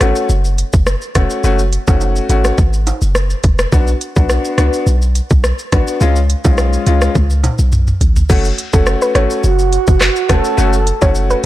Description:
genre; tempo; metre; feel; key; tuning
dancehall; 105 BPM; 4/4; straight; F# harmonic minor; A4 = 440 Hz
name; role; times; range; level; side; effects
clear baby grand piano; accompaniment; 0.0-11.4 s; G#3 to F#4; -19 LUFS; left 3 dB; sidechain pumping
warm 808-style bass; bass; 0.0-11.3 s; E#1 to C#2; -14 LUFS; equal; none
island pop drum kit; drums; 0.0-11.4 s; crash cymbal, handclaps, hi-hat, kick drum, rim click, shaker, toms; -15 LUFS; equal; none
maracas and timbales; percussion; 0.0-11.4 s; none; -29 LUFS; right 4 dB; none
soft round pluck; melody; 8.7-11.4 s; A4 to C#5; -18 LUFS; equal; chorus, ping-pong delay
breathy flute-like synth lead; second line; 9.4-10.9 s; F#4 to A4; -17 LUFS; right 7 dB; chorus, ping-pong delay
room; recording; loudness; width
little or no reverb; blown-out, overdriven recording, overdrive; -11 LUFS; side -15 dB against mid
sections
0.0-8.3 A section; 8.3-11.5 B section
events
drum fill 7.2-8.3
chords
0.0 F#m; 3.7 Bm; 6.0 C#; 8.3 F#m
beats
0.29 0.87 | 1.44 2.01 2.58 3.15 | 3.72 4.29 4.87 5.44 | 6.01 6.58 7.15 7.72 | 8.29 8.87 9.44 10.01 | 10.58 11.15

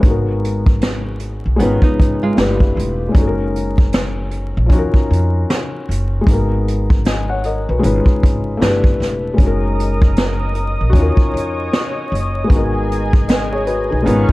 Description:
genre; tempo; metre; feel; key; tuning
lo-fi hip hop; 77 BPM; 4/4; swing 63% on 16ths; G# dorian; A4 = 438 Hz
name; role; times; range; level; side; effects
felt-muted upright piano; accompaniment; 0.0-14.3 s; E#3 to G#5; -20 LUFS; left 2 dB; cassette tape, low-pass filter
upright bass; bass; 0.0-14.3 s; E1 to E#2; -19 LUFS; equal; none
vintage brush drum kit; drums; 0.0-14.3 s; hi-hat, kick drum, snare drum; -15 LUFS; equal; none
nylon-string guitar; second line; 1.6-2.6, 14.1-14.3 s; D#3 to E#4; -21 LUFS; right 3 dB; low-pass filter, analog delay
lush unison pad; sustained chords; 9.4-14.3 s; G#4 to D#6; -24 LUFS; equal; chorus, low-pass filter
room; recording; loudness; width
light reverb; dark, warm production, vinyl crackle; -14 LUFS; side -19 dB against mid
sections
0.0-14.3 A section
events
none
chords
0.0 G#m7; 1.6 C#7/G#; 2.4 G6; 3.2 F#6; 4.7 D#m7; 6.3 G#m7; 7.8 C#7/G#; 8.6 G6; 9.4 F#6; 10.9 D#m7; 12.5 G#m7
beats
| 0.03 0.81 1.59 2.37 | 3.15 3.93 4.71 5.49 | 6.27 7.05 7.83 8.61 | 9.38 10.16 10.94 11.72 | 12.50 13.28 14.06

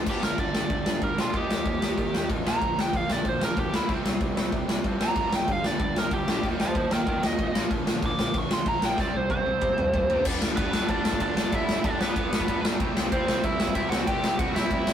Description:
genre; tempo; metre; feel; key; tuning
punk rock; 188 BPM; 4/4; straight; unclear; A4 = 438 Hz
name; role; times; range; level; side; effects
overdriven electric guitar; riff; 0.0-14.9 s; G2 to Eb4; -36 LUFS; right 4 dB; none
overdriven electric guitar; riff; 0.0-14.9 s; G2 to Eb4; -36 LUFS; right 1 dB; none
tight distorted guitar; riff; 0.0-14.9 s; G2 to E4; -36 LUFS; left 4 dB; distortion
fuzz picked electric bass; bass; 0.0-14.9 s; F#1 to Eb3; -36 LUFS; equal; none
biting lead guitar; melody; 0.1-14.9 s; B3 to D6; -28 LUFS; right 1 dB; overdrive
big rock drum kit; drums; 0.1-14.9 s; crash cymbal, kick drum, ride cymbal, snare drum, toms; -26 LUFS; equal; none
room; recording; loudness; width
light reverb; rough rehearsal-room recording, warm saturation; -23 LUFS; side -9 dB against mid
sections
0.1-10.3 A section; 10.3-14.9 B section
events
lead electric guitar solo 0.1-10.3; drum fill 9.0-10.3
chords
0.1 G5; 1.3 Eb; 2.5 Bb; 3.9 C5; 5.2 G5; 6.4 Eb; 7.5 Bb; 9.0 C5; 10.3 G; 12.8 C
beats
| 0.07 0.39 0.70 1.02 | 1.34 1.66 1.98 2.30 | 2.62 2.93 3.25 3.57 | 3.89 4.21 4.53 4.84 | 5.16 5.48 5.80 6.12 | 6.44 6.75 7.07 7.39 | 7.71 8.03 8.35 8.66 | 8.98 9.30 9.62 9.94 | 10.26 10.57 10.89 11.21 | 11.53 11.85 12.16 12.48 | 12.80 13.12 13.43 13.75 | 14.07 14.39 14.71

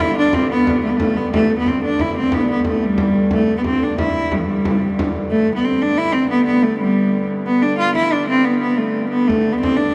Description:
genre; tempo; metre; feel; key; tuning
medieval dance; 120 BPM (dotted quarters); 6/8; straight; G major; A4 = 440 Hz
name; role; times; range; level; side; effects
clear cello; melody; 0.0-9.9 s; F3 to F4; -18 LUFS; equal; none
dark hurdy-gurdy; drone; 0.0-9.9 s; G2 to D3; -29 LUFS; equal; none
frame drum; percussion; 0.0-5.2, 9.3-9.8 s; none; -27 LUFS; equal; none
room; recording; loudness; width
wet cathedral reverb, RT60 5.7 s; heard from further back in the room; -17 LUFS; mono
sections
0.0-5.3 A section; 5.3-9.9 A section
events
none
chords
none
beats
| 0.33 0.82 | 1.32 1.82 | 2.32 2.82 | 3.32 3.82 | 4.32 4.82 | 5.31 5.81 | 6.31 6.81 | 7.30 7.80 | 8.30 8.80 | 9.29 9.79

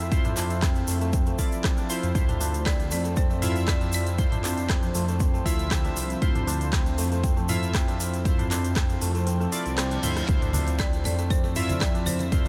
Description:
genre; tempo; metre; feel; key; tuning
afro house; 118 BPM; 4/4; straight; D minor; A4 = 442 Hz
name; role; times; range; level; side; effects
warm analog pad; sustained chords; 0.0-12.5 s; F3 to E5; -36 LUFS; equal; chorus, sidechain pumping
kora; arpeggios; 0.0-12.5 s; A3 to D4; -38 LUFS; equal; sidechain pumping, delay
warm analog keys; stabs; 0.0-12.5 s; E4 to E5; -36 LUFS; equal; chorus, sidechain pumping, delay
dark detuned saw bass; bass; 0.0-12.5 s; C2 to F2; -30 LUFS; equal; sidechain pumping
afro-pop drum kit; drums; 0.0-12.5 s; handclaps, hi-hat, rim click, toms; -35 LUFS; equal; none
egg shaker; percussion; 0.0-12.5 s; none; -40 LUFS; equal; none
electronic kick drum; drums; 0.1-12.4 s; none; -27 LUFS; equal; overdrive
folk marimba with hard mallets; melody; 2.7-5.9, 10.8-12.5 s; C5 to D5; -37 LUFS; equal; delay
reverse cymbal; sound effects; 9.7-10.3 s; none; -43 LUFS; equal; none
congas; percussion; 10.3-12.4 s; none; -36 LUFS; equal; none
room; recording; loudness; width
moderate cathedral reverb, RT60 5.5 s; dreamy mix soaked in reverb; -25 LUFS; mono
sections
0.0-12.5 A section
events
kick drops out 9.3-10.3; reverse cymbal 9.7-10.3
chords
0.0 Dm9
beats
| 0.12 0.63 1.13 1.64 | 2.15 2.66 3.17 3.68 | 4.18 4.69 5.20 5.71 | 6.22 6.73 7.24 7.75 | 8.25 8.76 9.27 9.78 | 10.29 10.79 11.30 11.81 | 12.32

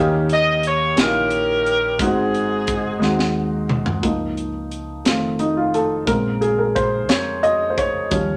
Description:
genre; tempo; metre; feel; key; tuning
slow gospel; 59 BPM (dotted quarters); 6/8; straight; unclear; A4 = 441 Hz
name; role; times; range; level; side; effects
dark upright piano; accompaniment; 0.0-8.4 s; Ab2 to Eb5; -22 LUFS; equal; none
fingered electric bass; bass; 0.0-8.4 s; F1 to F2; -31 LUFS; equal; none
warm saxophone section; melody; 0.3-3.4 s; C4 to Eb5; -21 LUFS; equal; none
crisp fusion drum kit; drums; 0.3-8.3 s; hi-hat, kick drum, snare drum, toms; -25 LUFS; equal; none
room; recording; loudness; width
moderate studio reverb, RT60 0.7 s; none; -20 LUFS; mono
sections
0.0-4.0 A section; 4.0-8.4 B section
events
drum fill 3.0-4.0; upright piano solo 4.0-8.4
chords
0.0 Eb7; 2.0 Ab7; 4.0 Db6; 5.1 F7; 6.1 Bbm7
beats
0.97 | 1.99 3.01 | 4.03 5.05 | 6.08 7.10 | 8.12

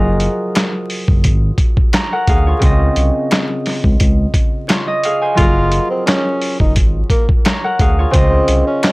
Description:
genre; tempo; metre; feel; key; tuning
hip hop, boom-bap hip-hop; 87 BPM; 4/4; swing 55% on 16ths; Gb lydian; A4 = 440 Hz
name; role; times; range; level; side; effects
concert harp; accompaniment; 0.0-8.9 s; Db3 to Bb5; -18 LUFS; equal; high-pass filter, low-pass filter
smooth synth bass; bass; 0.0-8.6 s; Gb1 to D2; -15 LUFS; equal; none
boom bap sampler-style drum kit; drums; 0.2-8.9 s; handclaps, hi-hat, kick drum, snare drum; -14 LUFS; equal; vintage 12-bit sampler grit
finger snaps; percussion; 0.6-8.9 s; none; -30 LUFS; left 2 dB; none
breathy tenor saxophone; melody; 5.4-8.9 s; Bb3 to F4; -18 LUFS; equal; high-pass filter, low-pass filter, analog delay
room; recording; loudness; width
little or no reverb; dry, gritty hardware recording, vinyl crackle; -12 LUFS; side -23 dB against mid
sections
0.0-8.9 A section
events
none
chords
0.0 Gbmaj9; 2.6 Dbmaj9; 5.4 Gbmaj9; 8.1 Dbmaj9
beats
0.55 1.24 1.93 | 2.62 3.31 4.00 4.69 | 5.38 6.07 6.76 7.45 | 8.14 8.83

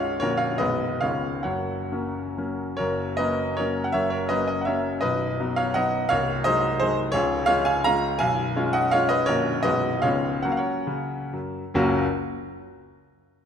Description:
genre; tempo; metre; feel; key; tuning
classical, romantic triple-time dance for piano with dotted rhythms; 125-193 BPM; 3/4; rubato; F# major; A4 = 444 Hz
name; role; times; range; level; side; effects
clear grand piano; solo; 0.0-12.1 s; A#0 to A#5; -22 LUFS; equal; none
room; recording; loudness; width
moderate concert hall reverb, RT60 1.9 s; none; -22 LUFS; side -8 dB against mid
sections
0.0-2.8 A section; 2.8-11.8 B section; 11.8-13.0 C section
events
slowing down 8.7-11.8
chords
0.2 F#/A#; 0.6 G#m/B; 1.0 C#7; 1.5 F#; 5.0 B; 6.1 G#7/B#; 7.1 C#; 8.2 C#7/B; 9.3 F#/A#; 9.7 G#m7/B; 10.0 C#7; 10.5 F#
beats
| 0.23 0.61 1.03 | 1.46 1.92 2.38 | 2.80 3.19 3.58 | 3.95 4.31 4.68 | 5.03 5.39 5.76 | 6.11 6.47 6.82 | 7.14 7.48 7.86 | 8.21 8.56 8.93 | 9.28 9.65 10.05 | 10.46 10.89 11.35 | 11.75

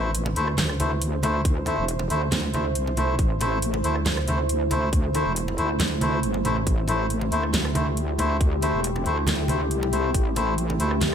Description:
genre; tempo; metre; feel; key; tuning
deep dubstep; 138 BPM; 4/4; half-time; A minor; A4 = 440 Hz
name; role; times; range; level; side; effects
deep dark ambient pad; sustained chords; 0.0-11.1 s; A3 to C5; -29 LUFS; right 1 dB; chorus, built-in reverb
melodica; stabs; 0.0-10.9 s; A3 to C5; -28 LUFS; left 2 dB; dub echo
wobble bass; bass; 0.0-11.1 s; E1 to D2; -26 LUFS; equal; chorus
dubstep drum kit; drums; 0.1-11.1 s; handclaps, hi-hat, rim click, snare drum; -29 LUFS; equal; studio ambience
congas; percussion; 0.3-11.1 s; none; -32 LUFS; right 2 dB; dub echo
electronic kick drum; drums; 1.4-10.2 s; none; -22 LUFS; equal; studio ambience
room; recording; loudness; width
light reverb; none; -21 LUFS; side -8 dB against mid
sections
0.0-11.1 A section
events
none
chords
0.0 Am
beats
0.15 0.58 1.01 | 1.45 1.89 2.32 2.75 | 3.19 3.62 4.06 4.49 | 4.93 5.36 5.80 6.23 | 6.67 7.10 7.54 7.97 | 8.41 8.84 9.28 9.71 | 10.15 10.58 11.02

